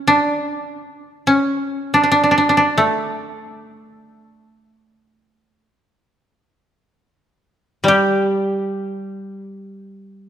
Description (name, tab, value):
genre	japanese traditional, Japanese chamber music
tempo	free time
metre	none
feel	none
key	unclear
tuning	A4 = 440 Hz
part	koto	melody	0.0-10.3 s	A3 to G4	-16 LUFS	equal	none
part	koto	accompaniment	7.8-10.3 s	G3	-20 LUFS	equal	none
room	moderate concert hall reverb, RT60 2.2 s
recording	none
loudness	-15 LUFS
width	side -9 dB against mid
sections	0.0-10.3 A section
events	none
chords	none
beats	free time